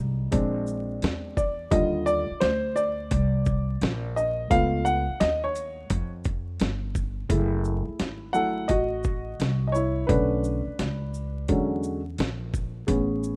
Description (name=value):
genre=hip hop, jazz-hop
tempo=86 BPM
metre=4/4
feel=swing 66% on 16ths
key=unclear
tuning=A4 = 440 Hz
part: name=dark grand piano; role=accompaniment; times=0.0-13.4 s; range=D3 to F#5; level=-28 LUFS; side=equal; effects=none
part: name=upright bass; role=bass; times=0.0-13.4 s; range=F#1 to E#2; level=-31 LUFS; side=equal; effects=none
part: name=dusty soul sampler-style drum kit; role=drums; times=0.3-13.4 s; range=hi-hat, kick drum, shaker, snare drum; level=-30 LUFS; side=equal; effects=overdrive
room=small room ambience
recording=rough home demo mix, vinyl crackle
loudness=-26 LUFS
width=mono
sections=0.0-7.3 A section; 7.3-13.4 B section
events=grand piano solo 0.0-7.3, 7.3-13.4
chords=0.3 A#7; 1.7 D#maj9; 4.5 C#7b13; 7.3 F#m9; 10.1 Bm9; 11.5 E13